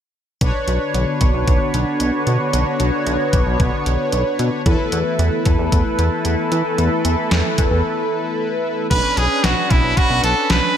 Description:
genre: synth-pop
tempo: 113 BPM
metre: 4/4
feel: straight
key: B minor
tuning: A4 = 439 Hz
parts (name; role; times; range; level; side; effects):
- analog synth brass; accompaniment; 0.4-10.8 s; C#4 to C#5; -21 LUFS; left 1 dB; chorus, phaser
- sweeping resonant pad; sustained chords; 0.4-8.9 s; D3 to C#5; -24 LUFS; equal; chorus
- chorused synth bass; bass; 0.4-10.6 s; B1 to E3; -19 LUFS; equal; none
- detuned 8-bit digital drum machine; drums; 0.4-10.6 s; crash cymbal, hi-hat, kick drum, snare drum; -20 LUFS; equal; gated reverb
- brilliant trumpet; melody; 8.9-10.8 s; E4 to B4; -17 LUFS; right 2 dB; digital delay
room: moderate lush hall reverb, RT60 2.3 s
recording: bright 1980s-style digital production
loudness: -16 LUFS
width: side -9 dB against mid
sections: 0.4-8.9 A section; 8.9-10.8 B section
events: break 7.8-8.9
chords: 0.4 Bmadd9; 4.7 Esus4; 8.9 Bmadd9

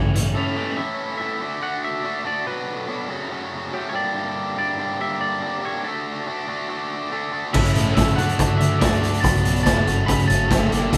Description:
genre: indie rock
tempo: 142 BPM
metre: 4/4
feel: straight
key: D major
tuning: A4 = 440 Hz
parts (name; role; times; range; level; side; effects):
- twangy electric guitar; melody; 0.0-11.0 s; G4 to B5; -29 LUFS; equal; none
- warm analog pad; sustained chords; 0.0-11.0 s; F#4 to D6; -39 LUFS; equal; chorus
- biting overdriven guitar; riff; 0.0-0.8, 7.5-11.0 s; F#2 to G4; -28 LUFS; equal; none
- distorted electric guitar; riff; 0.0-11.0 s; F#2 to G4; -29 LUFS; equal; overdrive
- overdriven picked electric bass; bass; 0.0-0.3, 7.5-11.0 s; E1 to D3; -28 LUFS; equal; none
- raw garage drum kit; drums; 0.2, 7.5-11.0 s; crash cymbal, hi-hat, kick drum, snare drum; -22 LUFS; equal; none
- glockenspiel with soft plastic mallets; second line; 7.1-11.0 s; A5 to B6; -38 LUFS; equal; none
room: moderate studio ambience, RT60 0.5 s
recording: band playing live in one room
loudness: -22 LUFS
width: mono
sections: 0.8-11.0 A section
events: break 0.4-0.8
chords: 0.0 A7; 0.8 A6; 1.4 Dadd9; 2.5 Bm7; 3.1 F#m7; 3.9 Gm6; 5.8 Dadd9; 7.5 A6; 8.2 Dadd9; 9.2 Bm7; 9.9 F#m7

